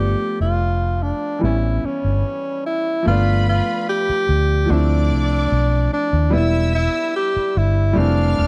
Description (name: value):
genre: soul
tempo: 73 BPM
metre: 4/4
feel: straight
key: unclear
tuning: A4 = 438 Hz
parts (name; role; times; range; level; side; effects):
- breathy tenor saxophone; melody; 0.0-8.5 s; C#4 to G4; -23 LUFS; equal; none
- bright baby grand piano; accompaniment; 0.0-8.5 s; E3 to E4; -27 LUFS; equal; none
- vintage muted fingered electric bass; bass; 0.0-8.5 s; E1 to Eb2; -20 LUFS; equal; none
- warm studio violin section; second line; 3.1-8.5 s; B4 to F6; -34 LUFS; equal; none
room: light reverb, studio ambience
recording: dark, warm production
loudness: -19 LUFS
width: mono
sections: 0.0-3.1 A section; 3.1-8.5 B section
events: break 2.2-3.1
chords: 0.0 G7; 1.4 A7; 3.1 G7; 4.7 Dm7; 6.3 Em7